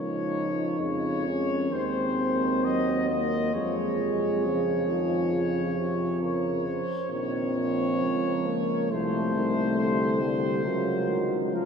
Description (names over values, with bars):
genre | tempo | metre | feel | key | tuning
classical, hymn-like piece for brass band | 63-70 BPM | 4/4 | rubato | Db major | A4 = 439 Hz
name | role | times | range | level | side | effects
bright trumpet section | melody | 0.0-11.7 s | Bb4 to Eb5 | -32 LUFS | left 3 dB | none
warm French horn section | second line | 0.0-11.7 s | G4 to C5 | -34 LUFS | right 5 dB | none
mellow euphonium | accompaniment | 0.0-11.7 s | F3 to Eb4 | -28 LUFS | left 1 dB | none
warm trombone | accompaniment | 0.0-11.7 s | C3 to Ab3 | -34 LUFS | right 3 dB | none
clear tuba | bass | 0.0-11.7 s | Bb1 to F2 | -31 LUFS | equal | none
room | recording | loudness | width
wet cathedral reverb, RT60 5.0 s | minimal, uncompressed stereo recording | -24 LUFS | side -6 dB against mid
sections
0.0-11.7 A section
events
none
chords
0.0 Db; 1.7 Cdim/Eb; 3.5 Db/F; 7.1 Bbm; 8.9 Adim/C; 10.7 Bbm/Db